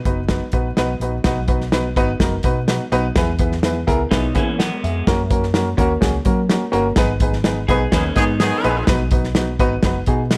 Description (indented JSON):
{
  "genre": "uptempo 1960s-style soul",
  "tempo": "126 BPM",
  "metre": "4/4",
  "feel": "straight",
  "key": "B major",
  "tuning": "A4 = 442 Hz",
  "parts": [
    { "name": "dark upright piano", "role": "accompaniment", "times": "0.1-10.4 s", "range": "A#3 to F#5", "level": "-23 LUFS", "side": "equal", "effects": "none" },
    { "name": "vintage muted fingered electric bass", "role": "bass", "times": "0.1-10.4 s", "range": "F#1 to F#3", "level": "-26 LUFS", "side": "equal", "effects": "none" },
    { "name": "warm soul drum kit", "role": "drums", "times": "0.1-10.4 s", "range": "hi-hat, kick drum, snare drum", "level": "-22 LUFS", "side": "equal", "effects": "none" },
    { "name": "electric guitar through a small old amp", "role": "riff", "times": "4.1-8.8 s", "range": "G#3 to G#4", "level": "-27 LUFS", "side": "equal", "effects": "none" },
    { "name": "warm horn section", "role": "second line", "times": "7.7-8.9 s", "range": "D#3 to G#4", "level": "-25 LUFS", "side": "equal", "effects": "none" }
  ],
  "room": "light reverb, studio reverb",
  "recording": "none",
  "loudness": "-18 LUFS",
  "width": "mono",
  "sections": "0.0-1.2 A section; 1.2-10.4 B section",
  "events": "upright piano fill 0.5-1.2; band accent 7.0-8.9",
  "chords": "0.0 B; 3.2 E; 5.1 F#; 7.0 G#m; 8.9 B"
}